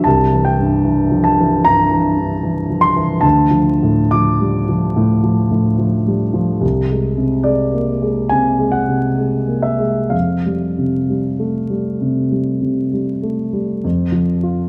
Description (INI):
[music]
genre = classical, impressionist solo piano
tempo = 60-77 BPM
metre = 4/4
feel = rubato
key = F major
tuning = A4 = 440 Hz
[part]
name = dark concert grand piano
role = solo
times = 0.0-14.7 s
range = C2 to D6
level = -16 LUFS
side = equal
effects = none
[sound]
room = moderate scoring stage reverb, RT60 2.1 s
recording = dark, warm production, vinyl crackle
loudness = -16 LUFS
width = mono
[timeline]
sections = 0.0-13.8 A section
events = none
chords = 0.1 C7; 3.2 Dm; 6.6 Caug7; 10.1 Fadd9; 13.8 N.C.